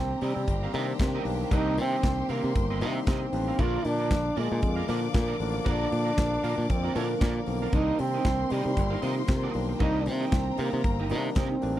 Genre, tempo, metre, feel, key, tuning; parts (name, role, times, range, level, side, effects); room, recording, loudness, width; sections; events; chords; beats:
disco; 116 BPM; 4/4; swing 56% on 16ths; C minor; A4 = 442 Hz
warm trombone; melody; 0.0-11.8 s; G3 to F4; -30 LUFS; right 2 dB
barky tine electric piano; accompaniment; 0.0-11.8 s; D3 to F4; -35 LUFS; left 8 dB
clear studio string section; sustained chords; 0.0-11.8 s; G4 to D6; -38 LUFS; left 2 dB
modern bright fingered electric bass; bass; 0.0-11.8 s; G1 to C3; -30 LUFS; equal
electric guitar at the edge of break-up; accompaniment; 0.1-11.8 s; C4 to F5; -36 LUFS; right 8 dB; ensemble chorus
modern studio drum kit; drums; 0.2-11.8 s; handclaps, hi-hat, kick drum, snare drum; -27 LUFS; equal
small room ambience; dry, close 1970s-style studio recording; -25 LUFS; side -13 dB against mid
0.0-11.8 A section
0.0 Cm7; 3.6 Bb; 7.7 Cm7
0.48 1.00 | 1.51 2.03 2.55 3.07 | 3.59 4.11 4.62 5.14 | 5.66 6.18 6.70 7.21 | 7.73 8.25 8.77 9.29 | 9.81 10.33 10.85 11.36